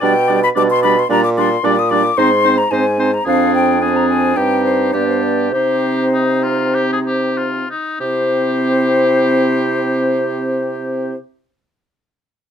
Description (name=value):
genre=quick classical-period movement for wind quintet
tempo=95-113 BPM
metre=4/4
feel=rubato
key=C minor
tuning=A4 = 440 Hz
part: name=mellow hollow silver concert flute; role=melody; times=0.0-11.2 s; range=C5 to Eb6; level=-19 LUFS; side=left 5 dB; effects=none
part: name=clear oboe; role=second line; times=0.0-11.2 s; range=Eb4 to D5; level=-22 LUFS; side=left 3 dB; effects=none
part: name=mellow French horn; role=accompaniment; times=0.0-11.2 s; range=G3 to C4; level=-21 LUFS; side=equal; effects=none
part: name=warm clarinet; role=accompaniment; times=0.0-11.2 s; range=D4 to E4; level=-22 LUFS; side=right 7 dB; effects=none
part: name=warm bassoon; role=bass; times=0.0-11.2 s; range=F2 to C3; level=-18 LUFS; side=right 2 dB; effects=none
room=light reverb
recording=none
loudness=-13 LUFS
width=side -8 dB against mid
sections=0.0-8.0 A section; 8.0-10.4 B section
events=slowing down 2.2-8.0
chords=0.0 G/B; 1.1 Gm/Bb; 2.2 Ab; 3.3 Dm7b5/F; 4.4 Cm/G; 4.9 G; 5.5 Cm; 8.0 C